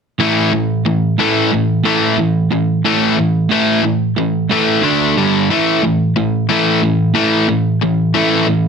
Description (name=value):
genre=rock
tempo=90 BPM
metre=4/4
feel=straight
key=unclear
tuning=A4 = 439 Hz
part: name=crunchy overdriven guitar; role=riff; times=0.2-8.7 s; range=G2 to D4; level=-15 LUFS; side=right 7 dB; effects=none
part: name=overdriven semi-hollow guitar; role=riff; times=0.2-8.7 s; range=G2 to D4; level=-15 LUFS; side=left 10 dB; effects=none
room=moderate studio reverb, RT60 0.6 s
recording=dense, heavily limited modern master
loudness=-12 LUFS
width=side -6 dB against mid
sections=0.2-8.7 A section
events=none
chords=0.2 A5; 4.8 D5; 5.2 G5; 5.5 A5